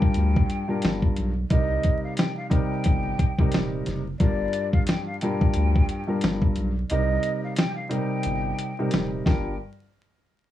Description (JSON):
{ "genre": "hip hop, boom-bap hip-hop", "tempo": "89 BPM", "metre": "4/4", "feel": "swing 58% on 16ths", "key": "G minor", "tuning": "A4 = 440 Hz", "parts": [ { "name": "breathy mellow jazz flute", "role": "melody", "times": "0.0-9.6 s", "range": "D5 to G5", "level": "-31 LUFS", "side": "equal", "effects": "high-pass filter, low-pass filter, slapback echo" }, { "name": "dark baby grand piano", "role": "accompaniment", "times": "0.0-9.5 s", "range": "G2 to Bb4", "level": "-27 LUFS", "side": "equal", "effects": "cassette tape, high-pass filter, low-pass filter" }, { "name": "dusty soul sampler-style drum kit", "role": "drums", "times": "0.0-9.4 s", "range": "hi-hat, kick drum, snare drum", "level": "-23 LUFS", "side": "equal", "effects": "none" }, { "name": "soft dub sub bass", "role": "bass", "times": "0.2-9.6 s", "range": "Eb1 to D2", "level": "-26 LUFS", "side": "equal", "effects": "none" } ], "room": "light reverb", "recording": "vinyl crackle", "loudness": "-22 LUFS", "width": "side -12 dB against mid", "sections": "0.0-9.6 A section", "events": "break 6.9-9.6", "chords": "0.0 Gm7; 1.5 Cm7; 4.2 Gm7; 6.9 Cm7; 9.3 Gm7; 9.6 N.C." }